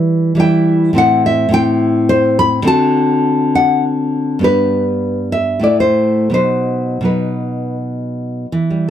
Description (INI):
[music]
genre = romantic piece for solo classical guitar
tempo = 80-109 BPM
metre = 3/4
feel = rubato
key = unclear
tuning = A4 = 440 Hz
[part]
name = nylon-string guitar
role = solo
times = 0.0-8.9 s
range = G2 to B5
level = -12 LUFS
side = equal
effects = none
[sound]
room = little or no reverb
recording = dry, close 1970s-style studio recording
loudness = -12 LUFS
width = side -10 dB against mid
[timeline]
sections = 0.0-8.5 A section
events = none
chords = 0.0 Em; 1.0 Am7; 2.7 D7; 4.4 G; 5.7 Am; 6.3 B